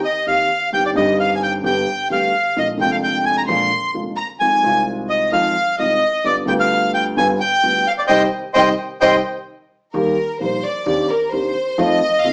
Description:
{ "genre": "tango", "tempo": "130 BPM", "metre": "4/4", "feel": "rubato", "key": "C minor", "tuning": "A4 = 440 Hz", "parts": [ { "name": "bandoneon", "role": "melody", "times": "0.0-9.2 s", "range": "C5 to C6", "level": "-20 LUFS", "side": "equal", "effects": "none" }, { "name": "bright studio violin section", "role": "second line", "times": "0.1-12.3 s", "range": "Bb4 to C6", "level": "-23 LUFS", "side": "equal", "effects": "none" }, { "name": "dark concert grand piano", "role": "accompaniment", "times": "0.3-12.3 s", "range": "F1 to G4", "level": "-24 LUFS", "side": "equal", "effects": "none" }, { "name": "upright bass", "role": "bass", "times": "0.3-12.3 s", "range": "F1 to F2", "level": "-36 LUFS", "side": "equal", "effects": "none" } ], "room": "wet studio reverb, RT60 0.8 s", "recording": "band playing live in one room, small speaker sound", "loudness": "-18 LUFS", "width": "mono", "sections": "0.0-9.9 A section; 9.9-12.3 B section", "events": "band accent 8.1-9.9; violin section solo 9.9-12.3", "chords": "0.0 Cm7/Eb; 0.7 Cm/G; 1.6 G; 2.6 Bb7; 4.4 Fm7; 6.2 G7; 8.1 Cm; 9.9 Eb; 10.9 Cmadd9/Eb; 11.8 F7" }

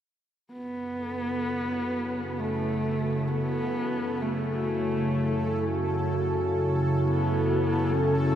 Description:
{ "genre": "dark ambient drone", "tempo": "free time", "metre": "none", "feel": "none", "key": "F# minor", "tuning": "A4 = 439 Hz", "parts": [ { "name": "dark horsehead fiddle", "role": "melody", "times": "0.5-8.4 s", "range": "A3 to C#4", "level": "-30 LUFS", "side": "equal", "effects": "shimmer reverb, analog delay" }, { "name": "deep dark ambient pad", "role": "sustained chords", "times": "1.4-8.4 s", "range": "E4 to A4", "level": "-31 LUFS", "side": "equal", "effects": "chorus, built-in reverb, shimmer reverb" }, { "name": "organ-like drone", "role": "drone", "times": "1.0-8.4 s", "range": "F#2 to C#3", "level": "-29 LUFS", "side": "equal", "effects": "ensemble chorus, built-in reverb" }, { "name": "bubbling stepped-filter texture", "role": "texture", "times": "1.0-8.4 s", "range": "A4", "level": "-34 LUFS", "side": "right 2 dB", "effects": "chorus, built-in reverb, shimmer reverb" } ], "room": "wet huge ambient reverb, RT60 7.9 s", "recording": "dreamy mix soaked in reverb", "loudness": "-25 LUFS", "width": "side -10 dB against mid", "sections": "0.5-8.4 A section", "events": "none", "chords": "0.5 F#m" }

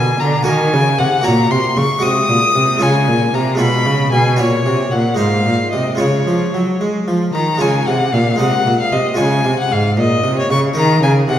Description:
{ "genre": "classical, baroque-style sonata movement with continuo", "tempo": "76 BPM (dotted quarters)", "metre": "6/8", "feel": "straight", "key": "Db major", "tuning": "A4 = 441 Hz", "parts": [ { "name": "clear violin", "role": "melody", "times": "0.0-11.4 s", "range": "Db5 to Eb6", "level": "-17 LUFS", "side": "left 3 dB", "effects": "none" }, { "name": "harpsichord", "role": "accompaniment", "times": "0.0-11.4 s", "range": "Ab2 to Eb5", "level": "-18 LUFS", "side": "equal", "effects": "none" }, { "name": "rich cello", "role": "bass", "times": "0.0-11.4 s", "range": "Ab2 to Ab3", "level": "-16 LUFS", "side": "right 1 dB", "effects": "none" } ], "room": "wet recital hall reverb, RT60 1.7 s", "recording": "heard from further back in the room", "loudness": "-12 LUFS", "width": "side -10 dB against mid", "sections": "0.0-7.6 A section; 7.6-11.4 B section", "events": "none", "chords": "0.5 Ebm; 1.2 Gb/Bb; 2.0 Ab7; 2.8 Db; 3.6 Db7/Cb; 4.4 Gb/Bb; 5.2 Ab; 6.0 Db; 8.4 Ab7; 9.2 Db; 10.8 Eb5" }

